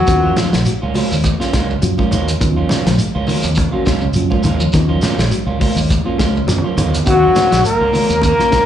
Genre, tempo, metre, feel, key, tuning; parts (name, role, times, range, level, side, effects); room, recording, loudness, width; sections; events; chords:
afrobeat; 103 BPM; 4/4; swing 55% on 16ths; Eb minor; A4 = 441 Hz
breathy trumpet; melody; 0.0-0.4, 7.1-8.7 s; Gb4 to Bb4; -14 LUFS; left 2 dB; slapback echo
edgy alto saxophone; second line; 0.0-0.4, 7.1-8.7 s; Gb3 to Bb3; -21 LUFS; right 2 dB; slapback echo
electric guitar at the edge of break-up; arpeggios; 0.0-8.7 s; C3 to Ab3; -24 LUFS; left 7 dB; slapback echo, tape echo
mellow tine electric piano; accompaniment; 0.1-8.5 s; Gb3 to F5; -23 LUFS; equal; slow stereo tremolo, slapback echo
fingered electric bass; bass; 0.1-8.7 s; Bb1 to Gb2; -18 LUFS; equal
warm soul drum kit; drums; 0.1-8.7 s; hi-hat, kick drum, snare drum; -20 LUFS; equal
congas; percussion; 0.1-8.4 s; -22 LUFS; right 2 dB; slapback echo
shekere; percussion; 0.1-8.7 s; -24 LUFS; right 1 dB
electric guitar at the edge of break-up; stabs; 0.2-8.7 s; Gb3 to F4; -24 LUFS; right 7 dB; slapback echo
light reverb, small room ambience; live gig heard through the venue's PA, club reverb, nothing above 10.8 kHz; -13 LUFS; side -10 dB against mid
0.0-8.7 A section
drum fill 6.2-7.1
0.0 Ebm9